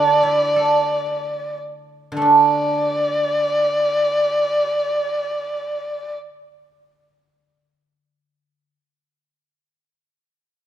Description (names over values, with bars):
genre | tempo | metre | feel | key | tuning
chinese traditional, Chinese chamber ensemble | free time | none | none | unclear | A4 = 440 Hz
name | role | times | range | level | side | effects
dark erhu | melody | 0.0-6.1 s | D5 | -19 LUFS | equal | none
guzheng | accompaniment | 0.0-8.7 s | D3 to A4 | -17 LUFS | right 4 dB | none
room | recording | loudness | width
light reverb | minimal, uncompressed stereo recording | -17 LUFS | side -10 dB against mid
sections
0.0-2.2 A section; 2.2-7.7 B section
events
slowing down 0.0-2.2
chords
none